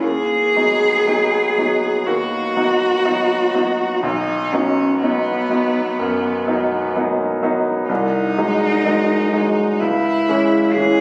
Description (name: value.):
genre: classical, romantic duo for cello and grand piano.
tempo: 54-65 BPM.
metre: 4/4.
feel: rubato.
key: B major.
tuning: A4 = 440 Hz.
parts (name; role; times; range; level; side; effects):
clear cello; melody; 0.0-11.0 s; B3 to G#4; -21 LUFS; equal; none.
bright grand piano; accompaniment; 0.0-11.0 s; B1 to D#4; -21 LUFS; equal; none.
room: moderate recital hall reverb, RT60 1.7 s.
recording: recorded on a phone in the room, studio reverb.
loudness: -18 LUFS.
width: mono.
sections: 0.0-11.0 A section.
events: none.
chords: 0.0 B/D#; 4.0 B; 7.9 G#7/B#; 9.8 C#m.